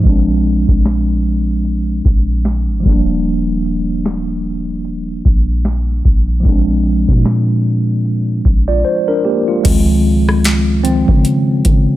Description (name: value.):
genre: contemporary R&B.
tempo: 75 BPM.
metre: 4/4.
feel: swing 58% on 16ths.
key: Eb major.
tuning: A4 = 440 Hz.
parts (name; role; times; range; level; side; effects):
mellow tine electric piano; accompaniment; 0.0-12.0 s; Eb3 to D5; -16 LUFS; equal; medium stereo tremolo.
soft 808-style bass; bass; 0.0-12.0 s; Eb1 to Db3; -16 LUFS; equal; none.
booming analog drum machine; drums; 0.0-11.9 s; crash cymbal, hi-hat, kick drum, rim click, snare drum; -14 LUFS; equal; none.
room: light reverb.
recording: low-pass filter.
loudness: -12 LUFS.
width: side -15 dB against mid.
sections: 0.0-9.7 A section; 9.7-12.0 B section.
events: filter sweep 0.0-9.7; tine electric piano solo 9.7-12.0.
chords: 0.1 Bb7; 2.9 Ebmaj7; 6.5 Bb7; 9.7 Dbmaj7.